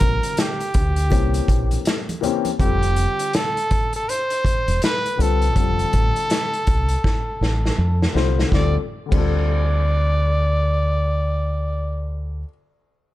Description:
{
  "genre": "hip hop, jazz-hop",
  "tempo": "81 BPM",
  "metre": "4/4",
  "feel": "swing 62% on 16ths",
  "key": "D minor",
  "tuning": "A4 = 441 Hz",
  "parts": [
    { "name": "warm trumpet", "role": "melody", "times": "0.0-12.3 s", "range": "G4 to D5", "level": "-24 LUFS", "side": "right 1 dB", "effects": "plate reverb" },
    { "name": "dark baby grand piano", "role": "accompaniment", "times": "0.0-12.5 s", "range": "D3 to C5", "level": "-26 LUFS", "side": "left 10 dB", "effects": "none" },
    { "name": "deep dub fingered electric bass", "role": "bass", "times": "0.0-12.4 s", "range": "E1 to F2", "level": "-20 LUFS", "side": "equal", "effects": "none" },
    { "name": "vintage drum kit", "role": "drums", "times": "0.0-9.3 s", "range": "crash cymbal, hi-hat, kick drum, snare drum", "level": "-22 LUFS", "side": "equal", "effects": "none" },
    { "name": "congas and egg shaker", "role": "percussion", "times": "0.0-2.6 s", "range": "none", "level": "-34 LUFS", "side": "right 3 dB", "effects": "none" }
  ],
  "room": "little or no reverb",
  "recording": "none",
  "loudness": "-18 LUFS",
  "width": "side -15 dB against mid",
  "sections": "0.0-8.5 A section; 8.5-11.5 B section",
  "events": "drum fill 7.0-8.5",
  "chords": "0.0 Gm7; 1.1 C7b9; 2.6 F; 5.6 Fadd9; 8.5 Dm7"
}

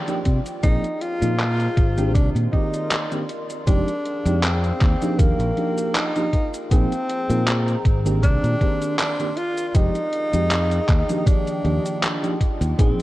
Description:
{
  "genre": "vaporwave",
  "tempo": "79 BPM",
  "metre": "4/4",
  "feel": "swing 54% on 16ths",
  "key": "unclear",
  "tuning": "A4 = 437 Hz",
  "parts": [
    { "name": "mellow FM electric piano", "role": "accompaniment", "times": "0.0-13.0 s", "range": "Eb3 to D5", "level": "-27 LUFS", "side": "right 1 dB", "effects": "lush chorus" },
    { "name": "warbly tape-like pad", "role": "sustained chords", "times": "0.0-13.0 s", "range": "D4 to C6", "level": "-33 LUFS", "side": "left 2 dB", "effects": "chorus, built-in reverb" },
    { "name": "detuned 8-bit digital drum machine", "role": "drums", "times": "0.1-13.0 s", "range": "cabasa, handclaps, hi-hat", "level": "-27 LUFS", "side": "equal", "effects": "gated reverb" },
    { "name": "fingered electric bass", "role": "bass", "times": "0.3-12.9 s", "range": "F1 to C3", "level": "-22 LUFS", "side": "equal", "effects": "tube saturation" },
    { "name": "electronic kick drum", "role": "drums", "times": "0.3-13.0 s", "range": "none", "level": "-18 LUFS", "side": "equal", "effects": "none" },
    { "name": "mellow tenor saxophone", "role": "melody", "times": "0.6-13.0 s", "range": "Bb3 to F4", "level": "-26 LUFS", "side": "equal", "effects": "tape echo" }
  ],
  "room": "digital ambience",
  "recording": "cassette tape",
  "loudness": "-18 LUFS",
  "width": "side -17 dB against mid",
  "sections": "0.0-13.0 A section",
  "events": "none",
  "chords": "0.0 Ebmaj9; 0.6 Bb9sus4; 2.2 Cm9; 3.7 Fm9; 5.2 Ebmaj9; 6.7 Bb9sus4; 8.2 Cm9; 9.7 Fm9; 11.3 Ebmaj9"
}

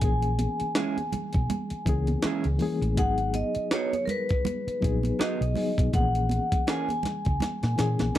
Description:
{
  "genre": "lush 1970s-style soul",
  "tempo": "81 BPM",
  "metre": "4/4",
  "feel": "swing 58% on 16ths",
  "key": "unclear",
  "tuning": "A4 = 439 Hz",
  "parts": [
    { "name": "vibraphone with medium hard mallets", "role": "melody", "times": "0.0-8.2 s", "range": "A#4 to G#5", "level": "-31 LUFS", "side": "equal", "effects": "none" },
    { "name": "bright reed electric piano", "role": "accompaniment", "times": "0.0-8.2 s", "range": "E3 to G#4", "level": "-31 LUFS", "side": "left 4 dB", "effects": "fast tremolo" },
    { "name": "hollow-body short-scale fingered electric bass", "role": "bass", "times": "0.0-8.2 s", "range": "G#1 to A#2", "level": "-27 LUFS", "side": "equal", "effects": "none" },
    { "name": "jungle sampler-style drum kit", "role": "drums", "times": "0.0-8.2 s", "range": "hi-hat, kick drum, snare drum", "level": "-28 LUFS", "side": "equal", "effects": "none" },
    { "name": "congas", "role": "percussion", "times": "0.4-8.1 s", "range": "none", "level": "-34 LUFS", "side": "right 4 dB", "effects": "none" },
    { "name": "electric guitar through a small old amp", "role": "riff", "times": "0.8-8.2 s", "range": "E3 to G#4", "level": "-30 LUFS", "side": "right 7 dB", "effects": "none" }
  ],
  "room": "little or no reverb",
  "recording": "dry, close 1970s-style studio recording",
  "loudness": "-24 LUFS",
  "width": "side -13 dB against mid",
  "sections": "0.0-8.2 A section",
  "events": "drum fill 7.4-8.2",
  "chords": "0.0 A#m7b5; 3.0 G#m7; 5.9 A#m7b5"
}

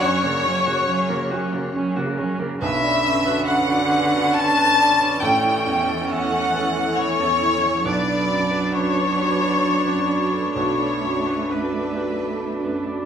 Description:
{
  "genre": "neoclassical piano and strings",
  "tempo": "68 BPM",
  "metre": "3/4",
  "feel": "uneven beats, rubato",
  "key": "B minor",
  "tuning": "A4 = 440 Hz",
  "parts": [
    { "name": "rich chamber violin section", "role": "melody", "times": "0.0-12.9 s", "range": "B4 to A5", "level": "-20 LUFS", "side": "left 2 dB", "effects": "none" },
    { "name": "rich cello", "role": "second line", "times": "0.0-13.1 s", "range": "C#3 to A3", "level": "-27 LUFS", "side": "right 4 dB", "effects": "none" },
    { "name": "felt-muted upright piano", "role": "accompaniment", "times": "0.0-13.1 s", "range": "A1 to C#5", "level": "-28 LUFS", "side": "right 2 dB", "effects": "none" },
    { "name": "rich viola", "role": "accompaniment", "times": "0.0-13.1 s", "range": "A#3 to D4", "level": "-27 LUFS", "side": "right 2 dB", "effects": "none" },
    { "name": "dark analog pad", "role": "sustained chords", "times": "0.0-13.1 s", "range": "D3 to B4", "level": "-31 LUFS", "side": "right 2 dB", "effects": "chorus" },
    { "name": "concert harp", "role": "arpeggios", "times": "0.0-13.1 s", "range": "D4 to C#6", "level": "-29 LUFS", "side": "left 1 dB", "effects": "none" }
  ],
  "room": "wet large studio reverb, RT60 0.8 s",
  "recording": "band playing live in one room",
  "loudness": "-18 LUFS",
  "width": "side -8 dB against mid",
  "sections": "0.0-13.1 A section",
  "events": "none",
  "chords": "0.0 F#; 2.6 Bmadd9; 5.2 A7; 7.8 Bmadd9; 10.6 Bm7"
}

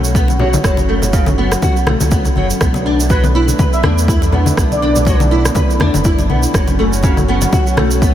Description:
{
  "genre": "afro house",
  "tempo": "122 BPM",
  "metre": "4/4",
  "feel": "swing 56% on 16ths",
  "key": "B minor",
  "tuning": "A4 = 441 Hz",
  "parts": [
    { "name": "warm analog pad", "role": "sustained chords", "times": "0.0-8.1 s", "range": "F#3 to F#4", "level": "-21 LUFS", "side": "equal", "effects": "chorus, sidechain pumping" },
    { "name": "nylon-string guitar", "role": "arpeggios", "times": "0.0-8.1 s", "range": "C#3 to B4", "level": "-19 LUFS", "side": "left 1 dB", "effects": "ensemble chorus, sidechain pumping, low-pass filter, tape echo" },
    { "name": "round analog bass", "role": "bass", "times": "0.0-8.1 s", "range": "F#1 to E2", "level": "-17 LUFS", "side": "equal", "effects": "sidechain pumping" },
    { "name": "tube shaker", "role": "percussion", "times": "0.0-8.1 s", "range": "none", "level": "-27 LUFS", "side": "right 6 dB", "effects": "none" },
    { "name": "electronic kick drum", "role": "drums", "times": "0.1-8.1 s", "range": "none", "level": "-16 LUFS", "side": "equal", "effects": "overdrive" },
    { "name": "congas", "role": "percussion", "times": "0.3-7.9 s", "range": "none", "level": "-21 LUFS", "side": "left 3 dB", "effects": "none" },
    { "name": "electronic rim click", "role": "drums", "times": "0.6-7.9 s", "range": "none", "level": "-25 LUFS", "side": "equal", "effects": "overdrive" },
    { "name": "expressive synth lead", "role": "melody", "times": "3.1-5.2 s", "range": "B4 to E5", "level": "-24 LUFS", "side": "right 1 dB", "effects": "ensemble chorus, tape echo" }
  ],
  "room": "light reverb, studio ambience",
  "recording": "none",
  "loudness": "-11 LUFS",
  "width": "side -11 dB against mid",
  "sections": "0.0-8.1 A section",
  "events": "none",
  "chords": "0.0 F#5; 2.6 Bm7; 6.5 F#m"
}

